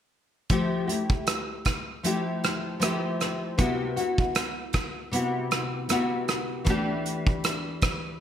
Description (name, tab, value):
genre	indie pop, bedroom pop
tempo	78 BPM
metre	4/4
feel	swing 55% on 16ths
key	unclear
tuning	A4 = 435 Hz
part	nylon-string guitar	accompaniment	0.5-8.2 s	C3 to G4	-28 LUFS	left 2 dB	analog chorus, vibrato effect
part	loose indie drum kit	drums	0.5-8.0 s	hi-hat, kick drum, rim click	-27 LUFS	right 1 dB	gated reverb
room	wet plate reverb, RT60 1.7 s, small room ambience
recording	bright 1980s-style digital production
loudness	-25 LUFS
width	side -9 dB against mid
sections	0.5-8.2 A section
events	none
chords	0.5 Fmaj9; 3.6 Cmaj7#11; 6.7 Em7